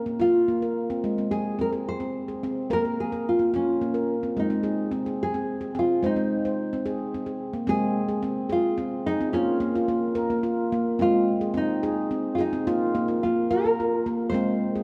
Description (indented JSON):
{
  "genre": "world meditative",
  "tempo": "72 BPM (dotted quarters)",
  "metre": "6/8",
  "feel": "straight",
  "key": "Ab major",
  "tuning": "A4 = 440 Hz",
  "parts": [
    { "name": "handpan", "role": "arpeggios", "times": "0.0-14.8 s", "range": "Ab3 to C5", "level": "-28 LUFS", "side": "equal", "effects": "none" },
    { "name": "nylon-string guitar", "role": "melody", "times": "0.2-14.8 s", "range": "Db4 to C5", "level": "-29 LUFS", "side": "equal", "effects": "none" }
  ],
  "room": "wet church reverb, RT60 2.8 s",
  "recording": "cassette tape",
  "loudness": "-25 LUFS",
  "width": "mono",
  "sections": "0.0-7.7 A section; 7.7-14.8 B section",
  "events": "none",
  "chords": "0.0 Bb5; 1.0 Ab; 2.7 Bbm; 4.4 Ab; 9.4 Bbm; 11.0 Ab; 12.7 Bb5",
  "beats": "0.21 | 1.04 1.87 | 2.71 3.54 | 4.37 5.20 | 6.03 6.86 | 7.70 8.53 | 9.36 10.19 | 11.02 11.85 | 12.68 13.51 | 14.34"
}